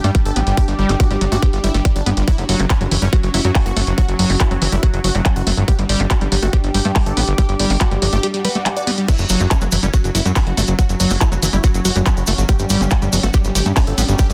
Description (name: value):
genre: psychedelic trance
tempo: 141 BPM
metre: 4/4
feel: straight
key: unclear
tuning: A4 = 438 Hz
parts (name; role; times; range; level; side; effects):
- supersaw stab; melody; 0.0-14.3 s; F#3 to D5; -27 LUFS; equal; phaser, sidechain pumping, dub echo
- overdriven acid bass; riff; 0.0-14.2 s; E3 to G4; -26 LUFS; equal; distortion, sidechain pumping, dub echo
- fat analog bass; bass; 0.0-14.3 s; F#1 to G2; -20 LUFS; equal; none
- drum and bass drum kit; drums; 0.0-14.3 s; crash cymbal, handclaps, hi-hat; -25 LUFS; equal; none
- warbly tape-like pad; texture; 0.0-14.3 s; D3 to D6; -30 LUFS; equal; chorus, built-in reverb, phaser, sidechain pumping
- electronic kick drum; drums; 0.1-14.3 s; none; -17 LUFS; equal; none
- swell; sound effects; 8.4-9.1 s; none; -32 LUFS; equal; none
- evolving wavetable pad; sustained chords; 10.2-14.3 s; F#3 to C#4; -31 LUFS; equal; none
- cabasa; percussion; 9.1-14.3 s; none; -30 LUFS; equal; none
room: little or no reverb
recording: dense, heavily limited modern master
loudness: -16 LUFS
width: mono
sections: 0.0-14.3 A section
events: swell 8.4-9.1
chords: 0.0 G5; 2.3 F#5; 5.7 G5; 9.1 F#5; 12.5 G5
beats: 0.15 | 0.57 1.00 1.43 1.85 | 2.28 2.70 3.13 3.55 | 3.98 4.40 4.83 5.25 | 5.68 6.11 6.53 6.96 | 7.38 7.81 8.23 8.66 | 9.09 9.51 9.94 10.36 | 10.79 11.21 11.64 12.06 | 12.49 12.91 13.34 13.77 | 14.19